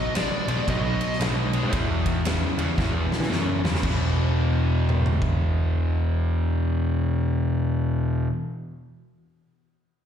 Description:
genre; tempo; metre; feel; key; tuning
blues rock power trio and southern rock; 114 BPM; 4/4; swing 63% on 8ths; unclear; A4 = 440 Hz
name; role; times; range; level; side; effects
nasal lead guitar with a parked wah; melody; 0.0-1.2 s; D5 to D#5; -31 LUFS; left 1 dB; overdrive, slapback echo, tape echo
cranked stack guitar; riff; 0.0-8.3 s; E2 to G#3; -26 LUFS; equal; overdrive
huge arena drum kit; drums; 0.2-5.3 s; crash cymbal, kick drum, ride cymbal, snare drum, toms; -28 LUFS; equal; none
fuzz picked electric bass; bass; 0.5-8.3 s; E1 to E3; -24 LUFS; equal; overdrive
room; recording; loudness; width
studio reverb; live gig heard through the venue's PA, recital hall reverb; -21 LUFS; side -9 dB against mid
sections
0.0-3.8 A section; 3.8-8.0 B section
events
drum fill 2.8-3.8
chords
0.0 B; 1.7 E5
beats
0.15 0.68 1.21 | 1.73 2.26 2.78 3.31 | 3.84 4.36 4.89 5.41 | 5.94 6.47 6.99 7.52

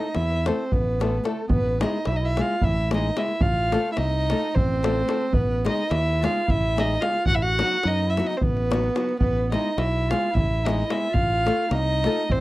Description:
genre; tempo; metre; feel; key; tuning
balkan folk, Balkan wedding band; 217 BPM (eighths); 7/8; straight; unclear; A4 = 440 Hz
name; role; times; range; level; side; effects
dark fiddle; melody; 0.0-12.4 s; A4 to F#5; -26 LUFS; equal; none
bright clarinet; second line; 0.0-12.4 s; A3 to F#4; -30 LUFS; right 5 dB; none
nylon-string guitar; accompaniment; 0.0-12.2 s; F#3 to A4; -27 LUFS; left 3 dB; none
davul; percussion; 0.1-12.4 s; none; -27 LUFS; equal; none
fingered electric bass; bass; 0.2-12.4 s; A1 to F#2; -25 LUFS; equal; none
room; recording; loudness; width
little or no reverb; dry, close 1970s-style studio recording; -20 LUFS; side -17 dB against mid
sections
0.0-1.5 A section; 1.5-12.4 A section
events
none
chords
0.0 Am; 1.5 E/A; 3.4 F/A; 5.3 G#m/A; 7.3 B/A; 9.2 E/A; 11.1 F/A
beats
0.11 0.38 0.66 0.93 1.21 | 1.48 1.75 2.03 2.30 2.58 2.85 3.13 | 3.40 3.68 3.95 4.23 4.50 4.78 5.05 | 5.33 5.61 5.88 6.16 6.43 6.71 6.99 | 7.26 7.54 7.82 8.09 8.37 8.65 8.92 | 9.20 9.48 9.75 10.03 10.31 10.59 10.86 | 11.14 11.42 11.70 11.98 12.25

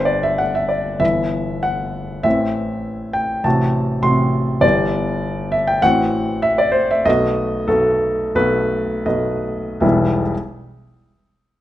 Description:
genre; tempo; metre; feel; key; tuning
classical, romantic character piece for solo piano; 77-102 BPM; 4/4; rubato; E minor; A4 = 441 Hz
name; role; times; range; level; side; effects
warm baby grand piano; solo; 0.0-10.3 s; E1 to C6; -16 LUFS; equal; none
room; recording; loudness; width
moderate recital hall reverb, RT60 1.2 s; nothing above 10.5 kHz; -16 LUFS; side -13 dB against mid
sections
0.0-9.8 A section; 9.8-11.6 B section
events
slowing down 3.4-9.8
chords
0.0 G; 1.0 Em/G; 2.2 Am; 3.4 F#dim/A; 4.6 Em/G; 5.8 F#m7b5/A; 7.1 B7; 9.8 Em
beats
0.40 1.02 1.64 | 2.25 2.86 3.45 4.04 | 4.63 5.24 5.83 6.45 | 7.07 7.70 8.37 9.08 | 9.83

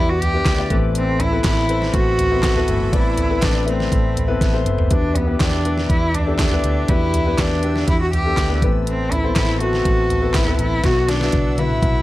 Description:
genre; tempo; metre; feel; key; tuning
piano-driven pop; 121 BPM; 4/4; straight; E minor; A4 = 439 Hz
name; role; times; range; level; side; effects
rich cello; melody; 0.0-12.0 s; B3 to G4; -22 LUFS; equal; none
warm concert grand piano; accompaniment; 0.0-12.0 s; A2 to E5; -23 LUFS; left 5 dB; none
sweeping resonant pad; sustained chords; 0.0-12.0 s; G4 to E6; -34 LUFS; right 2 dB; chorus
vintage muted fingered electric bass; bass; 0.0-12.0 s; F#1 to E2; -22 LUFS; equal; none
pop drum kit; drums; 0.2-11.9 s; handclaps, hi-hat, kick drum, snare drum, toms; -20 LUFS; right 1 dB; overdrive
room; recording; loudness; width
light reverb; dark, warm production; -16 LUFS; side -16 dB against mid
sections
0.0-12.0 A section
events
drum fill 4.4-4.9, 10.8-12.0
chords
0.0 Em7; 0.7 Amadd9; 4.9 Em7; 8.6 Amadd9; 10.8 Bsus4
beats
0.45 | 0.95 1.44 1.94 2.44 | 2.93 3.42 3.92 4.42 | 4.91 5.40 5.90 6.39 | 6.89 7.38 7.88 8.37 | 8.86 9.36 9.85 10.34 | 10.84 11.33 11.82

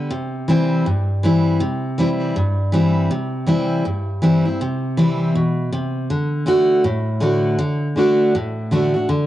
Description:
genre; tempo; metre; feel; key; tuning
country; 160 BPM; 4/4; swing 61% on 8ths; C lydian; A4 = 439 Hz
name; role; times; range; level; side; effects
picked steel-string acoustic guitar; solo; 0.0-9.3 s; G2 to F#4; -16 LUFS; equal; none
room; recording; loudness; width
light reverb, small room ambience; home recording on cassette, nothing above 10.8 kHz; -16 LUFS; side -14 dB against mid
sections
0.1-9.3 A section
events
none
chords
0.1 C; 6.1 D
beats
| 0.11 0.48 0.86 1.23 | 1.61 1.98 2.35 2.73 | 3.10 3.48 3.85 4.22 | 4.60 4.97 5.35 5.72 | 6.09 6.47 6.84 7.21 | 7.59 7.96 8.34 8.71 | 9.08

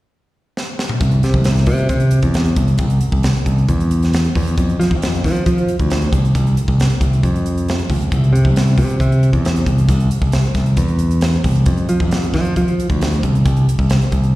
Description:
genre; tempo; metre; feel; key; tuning
math rock and midwest emo; 135 BPM; 4/4; straight; C major; A4 = 445 Hz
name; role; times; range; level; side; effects
crisp fusion drum kit; drums; 0.6-14.3 s; hi-hat, kick drum, snare drum, toms; -19 LUFS; equal; none
modern bright picked electric bass; bass; 1.0-14.3 s; C2 to F3; -14 LUFS; equal; none
room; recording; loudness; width
little or no reverb; live gig heard through the venue's PA, recital hall reverb; -13 LUFS; side -18 dB against mid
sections
0.0-1.0 A section; 1.0-14.4 B section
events
drum fill 0.6-1.0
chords
none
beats
0.12 0.56 | 1.01 1.45 1.90 2.34 | 2.78 3.23 3.67 4.12 | 4.56 5.00 5.45 5.89 | 6.33 6.78 7.22 7.67 | 8.11 8.55 9.00 9.44 | 9.89 10.33 10.78 11.22 | 11.67 12.11 12.56 13.01 | 13.45 13.90

